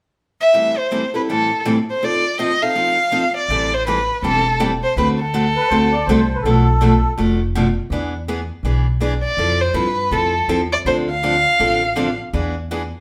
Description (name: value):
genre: acoustic string swing (jazz manouche)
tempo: 163 BPM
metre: 4/4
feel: swing 62% on 8ths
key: A minor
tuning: A4 = 441 Hz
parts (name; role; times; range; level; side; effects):
- warm violin; melody; 0.4-6.3, 9.2-12.2 s; A4 to F5; -20 LUFS; equal; none
- picked steel-string acoustic guitar; accompaniment; 0.5-12.8 s; A2 to A4; -22 LUFS; equal; none
- upright bass; bass; 3.5-12.9 s; E1 to G2; -24 LUFS; equal; none
- musette accordion; second line; 5.6-7.1 s; A4 to D5; -24 LUFS; equal; none
room: wet studio reverb, RT60 0.7 s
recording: band playing live in one room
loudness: -18 LUFS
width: mono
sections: 0.5-3.5 A section; 3.5-13.0 B section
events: none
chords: 0.0 N.C.; 0.5 Am7; 2.0 F6; 3.5 Am7; 5.0 D7; 6.4 Bm7b5; 7.9 E7; 9.4 Fmaj7; 10.9 Dm7; 12.3 E7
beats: 0.17 | 0.53 0.90 1.27 1.64 | 2.01 2.38 2.75 3.12 | 3.49 3.86 4.23 4.59 | 4.96 5.33 5.70 6.07 | 6.44 6.80 7.17 7.54 | 7.91 8.28 8.64 9.01 | 9.38 9.75 10.12 10.48 | 10.85 11.22 11.59 11.96 | 12.32 12.69